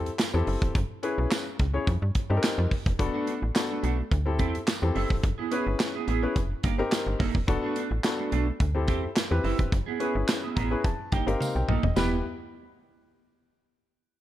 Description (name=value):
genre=early-eighties boogie funk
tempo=107 BPM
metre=4/4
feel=straight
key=E minor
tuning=A4 = 441 Hz
part: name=warm concert grand piano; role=accompaniment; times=0.0-12.2 s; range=B3 to A#5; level=-30 LUFS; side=left 3 dB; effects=none
part: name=slap-like FM bass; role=bass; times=0.0-12.2 s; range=E1 to G2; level=-28 LUFS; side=equal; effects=none
part: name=modern studio drum kit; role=drums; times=0.1-12.1 s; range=handclaps, hi-hat, kick drum, snare drum, toms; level=-28 LUFS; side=equal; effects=none
part: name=tambourine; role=percussion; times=0.2-12.2 s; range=none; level=-42 LUFS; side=right 6 dB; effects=none
part: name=clean electric guitar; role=riff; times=3.0-12.1 s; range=A3 to A4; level=-33 LUFS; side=right 8 dB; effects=tube saturation, lush chorus
room=light reverb, studio reverb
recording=dark, warm production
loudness=-24 LUFS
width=side -13 dB against mid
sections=0.0-12.0 A section; 12.0-14.2 B section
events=grand piano fill 10.3-12.0; drum fill 11.4-12.0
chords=0.0 D9sus4 (rootless); 0.8 F#9sus4 (rootless); 1.9 F9sus4; 3.0 E9sus4 (rootless); 4.1 D9sus4; 5.2 F#9sus4 (rootless); 6.4 F9sus4; 7.5 E9sus4 (rootless); 8.6 D9sus4; 9.7 F#9sus4 (rootless); 10.8 F9sus4; 12.0 Em